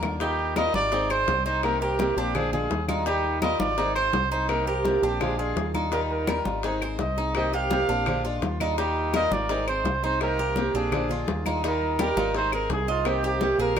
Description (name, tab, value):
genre	latin, Cuban son and guajira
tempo	168 BPM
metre	4/4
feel	straight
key	Eb major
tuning	A4 = 444 Hz
part	picked swing-style acoustic guitar	accompaniment	0.0-13.8 s	C3 to Ab4	-31 LUFS	left 3 dB	none
part	Cuban tres	arpeggios	0.0-13.8 s	D4 to Eb5	-29 LUFS	right 3 dB	none
part	deep dub picked electric bass	bass	0.0-13.8 s	Ab1 to Eb2	-31 LUFS	equal	none
part	bongos	percussion	0.0-13.8 s	none	-35 LUFS	left 8 dB	none
part	claves	percussion	0.0-13.8 s	none	-36 LUFS	left 8 dB	none
part	congas	percussion	0.0-13.8 s	none	-33 LUFS	left 1 dB	none
part	warm trumpet	melody	0.2-13.8 s	F4 to F5	-27 LUFS	right 2 dB	none
room	moderate plate reverb, RT60 2.8 s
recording	minimal, uncompressed stereo recording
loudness	-23 LUFS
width	side -8 dB against mid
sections	0.2-11.6 A section; 11.6-13.8 B section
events	drum fill 0.0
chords	0.2 Ebadd9; 0.9 Ab; 1.6 Cm7; 2.3 Bb7; 3.1 Ebadd9; 3.8 Ab; 4.5 Cm7; 5.2 Bb7; 5.9 Ebadd9; 6.6 Ab; 7.4 Cm7; 8.1 Bb7; 8.8 Ebadd9; 9.5 Ab; 10.2 Cm7; 10.9 Bb7; 11.6 Ebadd9; 12.4 Ab; 13.1 Cm7